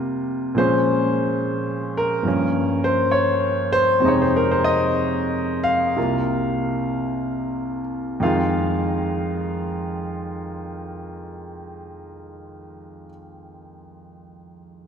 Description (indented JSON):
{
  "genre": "solo jazz",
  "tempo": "50-73 BPM",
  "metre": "4/4",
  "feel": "swing 69% on 8ths, rubato",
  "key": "F minor",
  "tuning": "A4 = 440 Hz",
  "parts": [
    { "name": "clear concert grand piano", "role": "solo", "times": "0.0-14.9 s", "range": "C2 to F5", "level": "-20 LUFS", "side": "equal", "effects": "none" }
  ],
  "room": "wet church reverb, RT60 3.4 s",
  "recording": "recorded in a church or concert hall",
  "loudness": "-19 LUFS",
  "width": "side -7 dB against mid",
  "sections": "0.0-8.2 A section; 8.2-13.0 B section",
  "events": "slowing down 0.6-8.2",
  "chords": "0.0 C7sus4; 0.6 Bbm7; 2.3 Gm7b5; 4.0 Fm7; 6.0 C7sus4; 8.2 Fm7",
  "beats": "| 0.58 1.41 2.25 3.12 | 4.02 4.97 5.97 7.05 | 8.21 9.40 10.59 11.77"
}